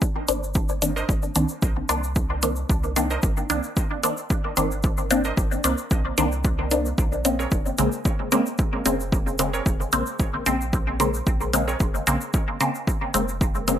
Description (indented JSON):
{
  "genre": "dub techno",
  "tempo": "112 BPM",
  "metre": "4/4",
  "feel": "straight",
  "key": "C minor",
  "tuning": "A4 = 445 Hz",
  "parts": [
    { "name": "electronic kick drum", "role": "drums", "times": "0.0-13.5 s", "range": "none", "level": "-23 LUFS", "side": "equal", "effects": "overdrive" },
    { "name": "egg shaker", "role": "percussion", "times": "0.0-13.8 s", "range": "none", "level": "-32 LUFS", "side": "left 2 dB", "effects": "none" },
    { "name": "filtered dub chord stab", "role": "stabs", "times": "0.3-13.8 s", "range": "Db3 to D4", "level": "-24 LUFS", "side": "left 1 dB", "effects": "phaser, sidechain pumping, dub echo" },
    { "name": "soft dub sub bass", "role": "bass", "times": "0.3-13.8 s", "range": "F1 to C2", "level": "-29 LUFS", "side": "equal", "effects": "sidechain pumping" },
    { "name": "electronic hi-hat", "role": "drums", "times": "0.3-13.8 s", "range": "none", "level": "-27 LUFS", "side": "equal", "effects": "none" },
    { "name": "wavetable chord stab", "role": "riff", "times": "1.0-11.8 s", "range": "C4 to Eb5", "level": "-34 LUFS", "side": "right 4 dB", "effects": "sidechain pumping, dub echo" }
  ],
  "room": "light reverb",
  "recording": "none",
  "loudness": "-21 LUFS",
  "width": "side -10 dB against mid",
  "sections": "0.0-13.8 A section",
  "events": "none",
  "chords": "0.0 Cm9; 7.0 Bbm9"
}